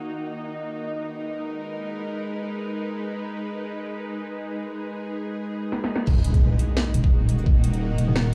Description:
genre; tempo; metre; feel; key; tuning
half-time drum and bass; 173 BPM; 4/4; swing 56% on 16ths, half-time; Eb minor; A4 = 438 Hz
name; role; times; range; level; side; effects
bowed-like drone; sustained chords; 0.0-8.3 s; Eb3 to Cb5; -33 LUFS; equal; built-in reverb, sidechain pumping
drum and bass drum kit; drums; 0.0-8.2 s; crash cymbal, hi-hat, shaker, snare drum, toms; -29 LUFS; equal; low-pass filter on hats, low-pass filter on perc, low-pass filter on snare, low-pass filter on cymbals, low-pass filter on toms, low-pass filter on room
pulsing gated texture; texture; 0.0-8.3 s; Eb4 to Eb5; -41 LUFS; equal; chorus, built-in reverb
deep soft wobble bass; bass; 6.1-8.3 s; Eb1; -24 LUFS; equal; chorus
electronic kick drum; drums; 6.1-7.5 s; none; -21 LUFS; equal; none
impact; sound effects; 6.1-7.5 s; none; -29 LUFS; equal; none
room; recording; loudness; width
light reverb, digital ambience; none; -26 LUFS; mono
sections
0.0-6.1 A section; 6.1-8.3 B section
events
drum fill 5.7-6.1; drop 6.1-8.3; impact 6.1-7.5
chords
0.0 Ebm; 0.5 Abm; 6.1 Ebm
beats
0.17 | 0.52 0.87 1.22 1.56 | 1.91 2.26 2.60 2.95 | 3.30 3.64 3.99 4.34 | 4.68 5.03 5.38 5.72 | 6.07 6.42 6.76 7.11 | 7.46 7.80 8.15

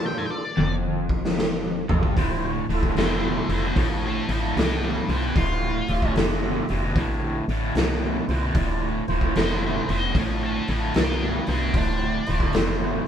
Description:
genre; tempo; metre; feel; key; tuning
blues rock power trio and southern rock; 75 BPM; 4/4; swing 66% on 8ths; D minor; A4 = 440 Hz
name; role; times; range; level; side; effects
octave-fuzz lead guitar; melody; 0.0-12.5 s; C4 to A5; -29 LUFS; left 2 dB; wah, distortion
tonewheel organ; sustained chords; 0.0-13.1 s; D4 to E5; -31 LUFS; right 2 dB; slow rotary speaker
crunchy overdriven guitar; riff; 0.6-13.0 s; D2 to B2; -26 LUFS; equal; tremolo
woody FM bass; bass; 0.6-13.0 s; D1 to C2; -27 LUFS; equal; none
raw garage drum kit; drums; 0.6-12.8 s; hi-hat, kick drum, snare drum, toms; -26 LUFS; equal; none
room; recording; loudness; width
light reverb; band playing live in one room; -21 LUFS; side -9 dB against mid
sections
0.0-2.2 A section; 2.2-13.1 B section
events
lead electric guitar solo 0.0-2.2; drum fill 0.6-2.2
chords
0.0 Dm; 2.2 Dm9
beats
0.58 1.38 | 2.17 2.97 3.77 4.57 | 5.37 6.17 6.96 7.76 | 8.56 9.36 10.16 10.95 | 11.75 12.55

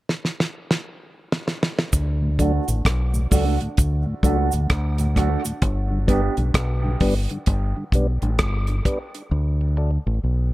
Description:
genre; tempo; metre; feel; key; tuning
dub reggae; 65 BPM; 4/4; swing 63% on 16ths; D major; A4 = 440 Hz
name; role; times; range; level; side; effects
damped 70s drum kit; drums; 0.1-9.3 s; hi-hat, kick drum, rim click, snare drum; -22 LUFS; equal; none
deep dub fingered electric bass; bass; 1.9-10.5 s; G1 to D2; -21 LUFS; equal; none
cabasa; percussion; 1.9-5.6 s; none; -31 LUFS; right 6 dB; none
mellow tonewheel organ; accompaniment; 2.2-10.1 s; D2 to D4; -27 LUFS; left 1 dB; slow rotary speaker, high-pass filter, low-pass filter
mellow electric guitar; accompaniment; 2.4-6.3 s; A3 to G4; -28 LUFS; right 4 dB; high-pass filter, low-pass filter, dub echo
room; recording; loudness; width
small room reverb; none; -19 LUFS; side -18 dB against mid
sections
0.0-1.9 A section; 1.9-10.5 B section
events
drum fill 0.1-1.9; filter sweep 1.9-10.5; part muted 5.6-10.5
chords
0.0 N.C.; 1.9 D; 5.6 G; 9.3 D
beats
0.09 1.01 | 1.93 2.85 3.78 4.70 | 5.62 6.54 7.47 8.39 | 9.31 10.24

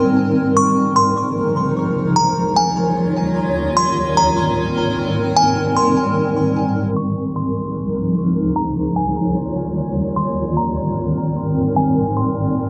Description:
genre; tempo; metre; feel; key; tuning
hip hop; 150 BPM; 4/4; half-time; Ab major; A4 = 440 Hz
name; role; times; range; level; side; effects
granular cloud pad; sustained chords; 0.0-12.7 s; Db2 to Db5; -19 LUFS; equal; built-in reverb
delicate synth tine bell; melody; 0.6-12.5 s; Ab5 to Db6; -22 LUFS; equal; chorus, low-pass filter, tape echo
room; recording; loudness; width
moderate huge ambient reverb, RT60 5.3 s; low-pass filter; -18 LUFS; mono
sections
0.0-7.0 A section; 7.0-12.7 B section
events
filter sweep 7.0-12.7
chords
0.0 Abmaj7; 0.6 Db6; 2.2 Eb7; 3.8 Abmaj7; 7.0 Db6; 8.6 Eb7; 10.2 Abmaj7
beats
0.17 | 0.56 0.96 1.36 1.76 | 2.17 2.56 2.96 3.37 | 3.77 4.17 4.57 4.96 | 5.37 5.76 6.17 6.57 | 6.96 7.37 7.76 8.16 | 8.56 8.96 9.37 9.77 | 10.16 10.56 10.96 11.37 | 11.77 12.16 12.56

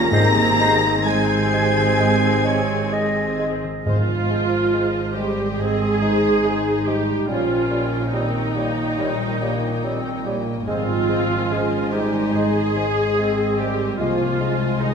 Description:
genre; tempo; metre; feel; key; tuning
classical, slow romantic movement for symphony orchestra; 63-75 BPM; 4/4; rubato; Ab major; A4 = 440 Hz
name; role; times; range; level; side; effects
muted symphonic violin section; melody; 0.0-14.9 s; Eb5 to Bb6; -30 LUFS; left 1 dB; none
muted symphonic violin section; second line; 0.0-14.9 s; C5 to Bb5; -30 LUFS; left 2 dB; none
muted symphonic viola section; accompaniment; 0.0-14.9 s; C4 to Ab4; -23 LUFS; right 2 dB; none
clear trombone section; sustained chords; 0.0-3.5 s; C3 to Ab3; -29 LUFS; right 1 dB; none
dark French horn section; sustained chords; 0.0-14.9 s; Eb3 to F4; -29 LUFS; left 4 dB; none
concert harp; arpeggios; 0.0-14.9 s; Ab2 to Eb5; -30 LUFS; left 8 dB; none
muted symphonic cello section; bass; 0.0-14.9 s; C2 to Bb3; -26 LUFS; right 4 dB; none
muted symphonic double bass section; bass; 0.0-14.9 s; Ab1 to C2; -29 LUFS; right 3 dB; none
concert flute; second line; 0.1-14.9 s; C5 to Bb5; -31 LUFS; left 1 dB; none
warm clarinet; second line; 0.1-14.9 s; G3 to Eb5; -26 LUFS; left 2 dB; none
warm bassoon; accompaniment; 0.1-14.9 s; G3 to Ab3; -30 LUFS; right 2 dB; none
timpani; percussion; 0.1-11.9 s; Ab2; -25 LUFS; equal; none
room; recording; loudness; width
wet recital hall reverb, RT60 1.7 s; minimal, uncompressed stereo recording; -18 LUFS; side -6 dB against mid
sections
0.0-3.9 A section; 3.9-14.9 B section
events
none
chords
0.1 Ab; 7.3 Eb7/Bb; 10.7 Ab; 14.0 Ab/C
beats
| 0.12 1.06 1.99 2.92 | 3.86 4.73 5.59 6.45 | 7.29 8.14 8.99 9.83 | 10.67 11.50 12.33 13.17 | 13.99 14.80

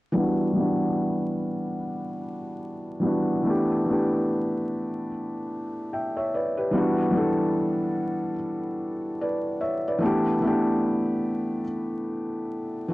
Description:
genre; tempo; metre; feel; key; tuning
hip hop; 73 BPM; 4/4; swing 59% on 16ths; E minor; A4 = 440 Hz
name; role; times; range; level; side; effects
felt-muted upright piano; accompaniment; 0.1-12.9 s; E3 to G5; -24 LUFS; equal; low-pass filter
room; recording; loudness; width
light reverb; dry, gritty hardware recording, vinyl crackle; -24 LUFS; side -19 dB against mid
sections
0.2-12.9 A section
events
filter sweep on felt piano 0.2-12.9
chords
0.2 Em9; 3.4 A9sus4; 6.7 Em9; 10.0 A9sus4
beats
| 0.16 0.98 1.80 2.63 | 3.45 4.27 5.09 5.91 | 6.74 7.56 8.38 9.20 | 10.02 10.85 11.67 12.49

